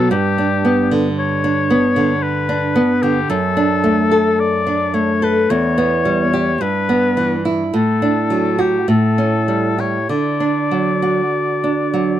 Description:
romantic duo for oboe and classical guitar; 48-58 BPM; 3/4; rubato; D major; A4 = 440 Hz
warm oboe; melody; 0.0-12.2 s; G4 to D5; -20 LUFS; left 5 dB
nylon-string guitar; accompaniment; 0.0-12.2 s; E2 to A4; -15 LUFS; right 1 dB
light reverb; dry, close 1970s-style studio recording; -14 LUFS; side -11 dB against mid
0.0-12.2 A section
0.1 G; 3.3 D/F#; 5.5 Em; 6.6 Em/G; 7.7 D/A; 8.9 A7; 10.1 D

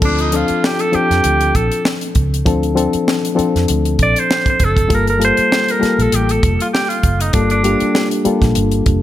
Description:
lush 1970s-style soul; 98 BPM; 4/4; swing 54% on 16ths; A4 = 440 Hz
bright alto saxophone; melody; 0.0-8.1 s; D4 to D5; -17 LUFS; right 2 dB; slapback echo
reed electric piano; accompaniment; 0.0-9.0 s; F3 to A4; -18 LUFS; left 4 dB
vintage muted fingered electric bass; bass; 0.0-9.0 s; F1 to F2; -18 LUFS; right 1 dB
tight funk drum kit; drums; 0.0-9.0 s; crash cymbal, hi-hat, kick drum, snare drum; -19 LUFS; equal
vibraphone with hard mallets; texture; 0.0-1.8, 7.7-9.0 s; D4 to F4; -26 LUFS; right 7 dB; stereo widening
light reverb, studio reverb; -13 LUFS; side -13 dB against mid
0.0-9.0 A section
alto saxophone solo 0.0-9.0
0.0 Dm7; 4.9 Gm9

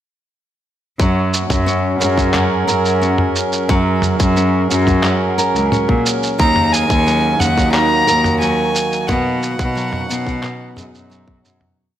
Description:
folktronica; 89 BPM; 4/4; straight; F# major; A4 = 440 Hz
pedal harmonium; sustained chords; 1.0-11.8 s; B2 to A#4; -22 LUFS; right 2 dB
nylon-string guitar; arpeggios; 1.0-12.0 s; B2 to A#4; -21 LUFS; right 1 dB; ping-pong delay
rich cello; bass; 1.0-11.6 s; C#2 to B2; -18 LUFS; equal
electronic kick drum; drums; 1.0-11.4 s; -18 LUFS; equal; overdrive
lo-fi sampler-style drum kit; drums; 1.0-11.7 s; handclaps, shaker, toms; -22 LUFS; right 1 dB
dark violin; melody; 6.4-11.1 s; F#5 to A#5; -18 LUFS; left 1 dB; ping-pong delay
light reverb, small room ambience; -13 LUFS; side -11 dB against mid
1.0-11.8 groove
fade-out 8.2-11.8
1.0 F#; 6.4 D#m7; 9.1 B6

